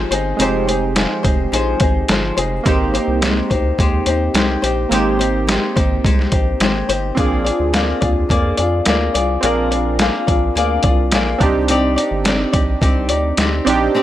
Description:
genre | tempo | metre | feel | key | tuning
indie pop, bedroom pop | 106 BPM | 4/4 | straight | unclear | A4 = 440 Hz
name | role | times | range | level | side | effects
flamenco guitar | accompaniment | 0.0-14.0 s | F3 to D5 | -19 LUFS | left 4 dB | lush chorus, warbly pitch drift
warm analog keys | accompaniment | 0.0-14.0 s | Ab3 to Bb4 | -21 LUFS | right 5 dB | chorus
round analog bass | bass | 0.0-13.9 s | F1 to F2 | -22 LUFS | equal | none
lo-fi sampler-style drum kit | drums | 0.1-13.8 s | hi-hat, kick drum, snare drum | -18 LUFS | equal | overdrive
room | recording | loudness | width
little or no reverb | none | -14 LUFS | side -13 dB against mid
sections
0.0-14.0 A section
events
none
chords
0.0 Fm7; 2.7 Abmaj7; 7.2 Bb7; 11.4 Cmadd9

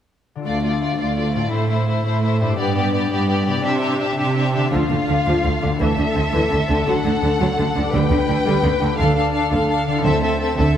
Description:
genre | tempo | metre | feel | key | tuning
cinematic | 113 BPM (dotted quarters) | 6/8 | straight | D dorian | A4 = 440 Hz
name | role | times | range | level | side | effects
dark symphonic viola section | accompaniment | 0.4-10.8 s | E3 to D4 | -26 LUFS | right 1 dB | none
concert harp | arpeggios | 0.4-10.8 s | G2 to D5 | -26 LUFS | left 5 dB | none
warm symphonic violin section | melody | 0.5-10.8 s | C5 to G5 | -26 LUFS | left 1 dB | none
warm symphonic violin section | second line | 0.5-10.8 s | E4 to B4 | -24 LUFS | left 4 dB | none
warm symphonic cello section | bass | 0.5-10.8 s | D2 to D3 | -22 LUFS | right 2 dB | none
clear symphonic double bass section | bass | 4.7-10.8 s | D2 | -22 LUFS | right 2 dB | none
timpani | percussion | 5.8-10.5 s | D3 | -27 LUFS | right 2 dB | none
room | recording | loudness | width
moderate scoring stage reverb, RT60 2.0 s | none | -17 LUFS | side -9 dB against mid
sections
0.5-4.7 A section; 4.7-10.8 B section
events
build-up 4.7-10.8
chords
0.5 Dm; 1.5 Am; 2.6 G; 3.6 Cadd9; 4.7 Dm; 5.8 Am/D; 6.9 D; 7.9 G/D; 9.0 Dm; 10.0 Am/D

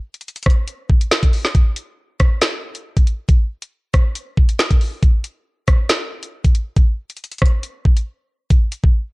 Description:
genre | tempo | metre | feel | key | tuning
hip hop | 138 BPM | 4/4 | half-time | none | none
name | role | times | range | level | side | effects
drill drum kit | drums | 0.1-8.9 s | finger snaps, hi-hat, kick drum, rim click, snare drum | -14 LUFS | equal | vintage 12-bit sampler grit
room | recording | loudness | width
little or no reverb | dry, gritty hardware recording | -15 LUFS | side -25 dB against mid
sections
0.0-8.5 A section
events
break 8.1-8.5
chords
none

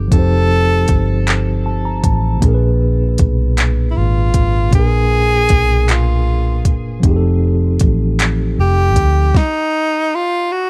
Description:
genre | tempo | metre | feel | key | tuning
slow six-eight R&B | 52 BPM (dotted quarters) | 6/8 | straight | unclear | A4 = 440 Hz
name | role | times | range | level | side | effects
mellow tine electric piano | accompaniment | 0.0-9.4 s | Bb2 to Bb5 | -22 LUFS | equal | none
vintage muted fingered electric bass | bass | 0.0-9.3 s | F1 to D2 | -18 LUFS | equal | none
clear tenor saxophone | melody | 0.1-10.7 s | Eb4 to A4 | -20 LUFS | equal | tape echo
smooth R&B drum kit | drums | 0.1-9.5 s | handclaps, hi-hat, kick drum, snare drum | -17 LUFS | equal | none
room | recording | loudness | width
little or no reverb | dry, close 1970s-style studio recording | -15 LUFS | mono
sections
0.0-10.7 A section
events
tine electric piano fill 1.3-2.4; stop 9.3-10.7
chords
0.0 F9; 2.4 Bb7b9; 7.0 F9; 9.3 N.C.

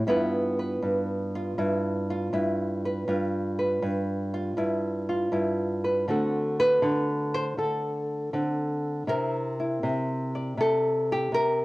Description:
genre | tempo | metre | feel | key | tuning
solo jazz | 80 BPM | 4/4 | swing 69% on 8ths | G mixolydian | A4 = 440 Hz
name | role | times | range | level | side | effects
nylon-string guitar | solo | 0.0-11.6 s | G2 to D5 | -25 LUFS | equal | none
room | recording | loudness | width
moderate large studio reverb, RT60 0.9 s | worn, warbling old tape, cassette tape, warbly pitch drift | -25 LUFS | side -19 dB against mid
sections
0.0-11.6 A section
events
none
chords
0.1 G6; 6.1 D6; 9.1 C13

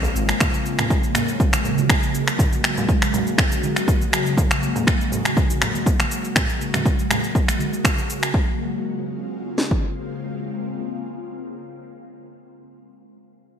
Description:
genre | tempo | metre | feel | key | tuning
afro house | 121 BPM | 4/4 | straight | Bb minor | A4 = 439 Hz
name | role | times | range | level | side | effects
ethereal airy pad | sustained chords | 0.0-12.1 s | Db3 to Gb4 | -25 LUFS | equal | ensemble chorus, built-in reverb, phaser, sidechain pumping
electronic shaker and finger snaps | drums | 0.0-8.3 s | none | -23 LUFS | equal | overdrive, gated reverb
congas | percussion | 0.0-8.1 s | none | -30 LUFS | right 3 dB | none
house drum kit | drums | 0.4-9.8 s | kick drum, snare drum | -20 LUFS | equal | overdrive
room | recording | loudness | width
moderate lush hall reverb, RT60 2.0 s | bright 1980s-style digital production | -18 LUFS | side -8 dB against mid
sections
0.0-8.3 A section; 8.3-12.3 B section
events
none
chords
0.4 Gbadd9; 8.3 Bbm9

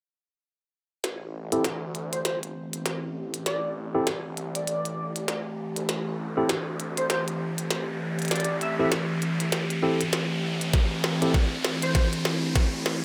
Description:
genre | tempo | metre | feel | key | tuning
glitch hop | 99 BPM | 4/4 | swing 59% on 16ths | A minor | A4 = 440 Hz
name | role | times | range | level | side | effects
warbly tape-like pad | sustained chords | 1.4-13.0 s | E3 to G4 | -34 LUFS | equal | chorus, built-in reverb, sidechain pumping
phased detuned saw bass | bass | 1.0-13.0 s | G1 to D2 | -40 LUFS | equal | phaser, overdrive, high-pass filter
glitchy drum kit | drums | 1.0-13.0 s | hi-hat, snare drum | -32 LUFS | equal | high-pass filter on snare, high-pass filter on hats, high-pass filter on room
riser | sound effects | 3.3-13.0 s | none | -38 LUFS | equal | none
barky tine electric piano | stabs | 1.5-11.3 s | C4 to A4 | -31 LUFS | equal | sidechain pumping, low-pass filter, delay
sync lead | melody | 2.1-12.1 s | C5 to E5 | -35 LUFS | equal | lush chorus, delay
electronic kick drum | drums | 10.7-12.7 s | none | -25 LUFS | equal | overdrive
room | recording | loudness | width
light reverb | none | -27 LUFS | mono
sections
1.0-13.0 A section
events
build-up 1.0-13.0; drum fill 1.0-13.0; filter sweep on tine electric piano 1.0-13.0; filter sweep on analog synth lead 1.0-13.0; riser 3.3-13.0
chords
1.0 Am7

